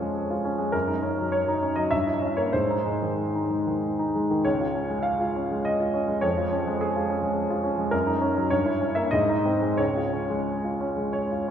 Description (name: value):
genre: classical, romantic character piece for solo piano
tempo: 87-109 BPM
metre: 3/4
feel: rubato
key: Db major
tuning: A4 = 440 Hz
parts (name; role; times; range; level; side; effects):
- clear grand piano; solo; 0.0-11.5 s; Db2 to F5; -23 LUFS; equal; none
room: wet church reverb, RT60 2.9 s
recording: recorded in a church or concert hall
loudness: -23 LUFS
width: side -8 dB against mid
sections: 0.0-11.5 A section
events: none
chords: 0.0 Db/F; 0.7 Ebm7/Gb; 1.9 Gdim7; 2.5 Ab; 4.4 Db; 6.2 Db/F; 7.9 Ebm7/Gb; 8.5 Gdim7; 9.1 Ab; 9.8 Db